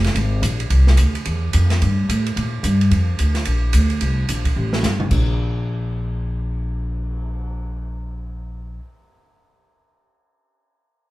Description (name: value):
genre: modal jazz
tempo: 218 BPM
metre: 4/4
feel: swing 62% on 8ths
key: unclear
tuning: A4 = 440 Hz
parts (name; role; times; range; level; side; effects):
- upright bass; bass; 0.0-8.8 s; F1 to Bb2; -18 LUFS; equal; none
- open jazz drum kit; drums; 0.0-7.3 s; crash cymbal, cymbal swell, hi-hat, kick drum, ride cymbal, snare drum, toms; -25 LUFS; right 2 dB; none
room: moderate studio reverb, RT60 0.7 s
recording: heard from further back in the room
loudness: -17 LUFS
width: side -18 dB against mid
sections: 0.0-5.1 A section; 5.1-7.3 B section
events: drum fill 4.6-5.1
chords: none